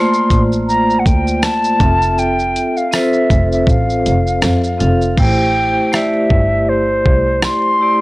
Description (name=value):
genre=lo-fi hip hop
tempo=80 BPM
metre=4/4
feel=swing 55% on 16ths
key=unclear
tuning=A4 = 440 Hz
part: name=concert flute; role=melody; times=0.0-8.0 s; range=C5 to C6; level=-16 LUFS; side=equal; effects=low-pass filter
part: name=vibraphone with hard mallets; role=accompaniment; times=0.0-8.0 s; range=A3 to F5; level=-17 LUFS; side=equal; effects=cassette tape, low-pass filter
part: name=dusty soul sampler-style drum kit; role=drums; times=0.1-7.6 s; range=crash cymbal, hi-hat, kick drum, rim click, shaker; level=-17 LUFS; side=equal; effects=vintage 12-bit sampler grit
part: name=rich double bass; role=bass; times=0.3-7.4 s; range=F1 to F2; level=-18 LUFS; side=equal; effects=tube saturation
part: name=tambourine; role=percussion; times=1.4-7.6 s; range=none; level=-32 LUFS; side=right 2 dB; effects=none
room=light reverb, small room ambience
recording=dry, gritty hardware recording, transformer saturation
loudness=-12 LUFS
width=side -19 dB against mid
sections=0.0-5.2 A section; 5.2-8.0 A section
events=hi-hats muted 5.2-8.0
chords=0.0 Bbmaj7; 1.8 Fmaj7; 5.2 Am7